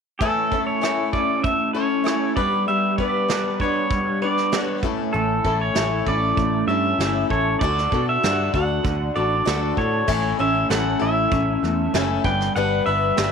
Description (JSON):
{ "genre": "folk rock and heartland rock", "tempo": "97 BPM", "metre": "4/4", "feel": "straight", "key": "A mixolydian", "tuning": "A4 = 440 Hz", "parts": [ { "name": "pedal steel guitar", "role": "melody", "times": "0.2-13.3 s", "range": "A4 to G5", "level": "-23 LUFS", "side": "right 2 dB", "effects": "none" }, { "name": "picked swing-style acoustic guitar", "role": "accompaniment", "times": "0.2-13.3 s", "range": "A2 to B4", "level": "-25 LUFS", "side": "left 11 dB", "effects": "none" }, { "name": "electric guitar through a small old amp", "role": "riff", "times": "0.2-13.3 s", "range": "G2 to B4", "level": "-25 LUFS", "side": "right 1 dB", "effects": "ensemble chorus" }, { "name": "soft brush drum kit", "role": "drums", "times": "0.2-13.3 s", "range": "crash cymbal, hi-hat, kick drum, rim click, snare drum", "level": "-27 LUFS", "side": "right 4 dB", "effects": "none" }, { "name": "picked electric bass", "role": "bass", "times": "5.1-13.3 s", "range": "F#1 to B2", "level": "-26 LUFS", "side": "right 1 dB", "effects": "none" } ], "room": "light reverb", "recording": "1960s-style stereo", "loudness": "-19 LUFS", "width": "side -6 dB against mid", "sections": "0.2-10.1 A section; 10.1-13.3 B section", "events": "none", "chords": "0.2 A; 2.4 G; 4.8 A; 7.6 D; 10.1 A; 12.2 G" }